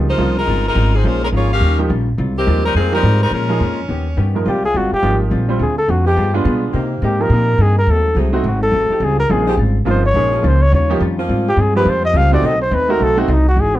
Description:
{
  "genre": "jazz, big band swing",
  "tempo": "211 BPM",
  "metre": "4/4",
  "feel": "swing 62% on 8ths",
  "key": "Ab major",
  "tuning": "A4 = 442 Hz",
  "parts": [
    { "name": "bright baby grand piano", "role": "accompaniment", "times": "0.0-13.3 s", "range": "Ab2 to C5", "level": "-21 LUFS", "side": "right 4 dB", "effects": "none" },
    { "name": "vintage hollow-body jazz guitar", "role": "accompaniment", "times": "0.0-13.8 s", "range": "Ab2 to Ab4", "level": "-23 LUFS", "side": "left 3 dB", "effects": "none" },
    { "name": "upright bass", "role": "bass", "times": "0.0-13.8 s", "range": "G1 to C3", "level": "-16 LUFS", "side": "equal", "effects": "none" },
    { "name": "edgy saxophone section", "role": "melody", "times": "0.1-4.3 s", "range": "Eb3 to F5", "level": "-19 LUFS", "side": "left 1 dB", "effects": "none" },
    { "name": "mellow trumpet", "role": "melody", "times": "4.5-13.8 s", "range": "B3 to F5", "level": "-17 LUFS", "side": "equal", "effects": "none" },
    { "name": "mellow saxophone section", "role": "sustained chords", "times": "4.5-12.6 s", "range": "C3 to A4", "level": "-24 LUFS", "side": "right 1 dB", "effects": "none" }
  ],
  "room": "light reverb",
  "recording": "dark, warm production",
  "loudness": "-13 LUFS",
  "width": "side -14 dB against mid",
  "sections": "0.0-4.5 A section; 4.5-13.6 B section",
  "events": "trumpet solo 4.5-13.8",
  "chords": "0.0 Dbmaj9#11; 1.0 Bbm7; 1.6 Eb9; 2.2 Abmaj13; 3.3 Bbm7; 3.9 Eb7b13; 4.5 Abmaj13; 5.6 Dm7; 6.2 G7b9; 6.7 Cm7; 7.9 Ab7b9; 9.0 Dbmaj9#11; 10.2 Bbm7; 10.7 Eb9; 11.3 Abmaj13; 12.4 B7b9"
}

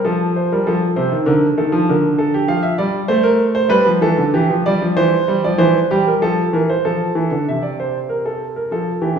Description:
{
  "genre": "classical, baroque-style two-part invention for grand piano",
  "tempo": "97 BPM",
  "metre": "4/4",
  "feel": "straight",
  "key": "unclear",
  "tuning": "A4 = 440 Hz",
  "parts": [
    { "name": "warm concert grand piano", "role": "solo", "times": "0.0-9.2 s", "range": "C3 to F5", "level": "-14 LUFS", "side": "right 1 dB", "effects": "none" }
  ],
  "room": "wet recital hall reverb, RT60 1.7 s",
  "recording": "recorded in a church or concert hall, studio reverb",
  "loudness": "-14 LUFS",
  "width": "side -7 dB against mid",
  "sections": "0.0-7.4 A section; 7.4-9.2 B section",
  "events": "none",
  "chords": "0.0 F; 1.3 Bb/D; 2.5 F; 3.7 G7; 4.9 C/E; 6.2 F; 7.4 Am/C; 8.7 F"
}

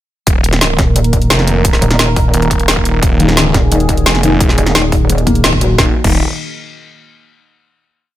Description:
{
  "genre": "dark technical drum and bass",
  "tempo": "174 BPM",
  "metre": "4/4",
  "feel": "straight",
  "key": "unclear",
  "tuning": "A4 = 440 Hz",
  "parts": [
    { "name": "dark analog pad", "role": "sustained chords", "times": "0.3-5.9 s", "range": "Eb3 to Eb5", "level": "-19 LUFS", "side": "right 2 dB", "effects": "chorus, sidechain pumping" },
    { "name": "snarling distorted saw bass", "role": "bass", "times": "0.3-6.2 s", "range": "Eb1 to F1", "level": "-15 LUFS", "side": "equal", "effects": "distortion, overdrive, sidechain pumping" },
    { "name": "drum and bass drum kit", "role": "drums", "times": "0.3-6.1 s", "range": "crash cymbal, hi-hat, snare drum", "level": "-15 LUFS", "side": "equal", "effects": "overdrive, studio reverb" },
    { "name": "electronic kick drum", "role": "drums", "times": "0.3-6.1 s", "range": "none", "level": "-15 LUFS", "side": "equal", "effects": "overdrive, studio reverb" },
    { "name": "pulsing pluck wobble bass", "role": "bass", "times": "0.8-5.8 s", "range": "Eb1", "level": "-14 LUFS", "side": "equal", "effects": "chorus" },
    { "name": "felt-muted upright piano", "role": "arpeggios", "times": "3.2-6.2 s", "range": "Eb3 to Bb3", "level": "-17 LUFS", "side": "left 4 dB", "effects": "sidechain pumping, tape echo" }
  ],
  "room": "digital ambience",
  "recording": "none",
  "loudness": "-9 LUFS",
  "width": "side -13 dB against mid",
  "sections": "0.3-5.8 drop; 5.8-7.2 final chord",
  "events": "drop 0.3-5.8; band accent 5.4",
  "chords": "0.3 Eb5"
}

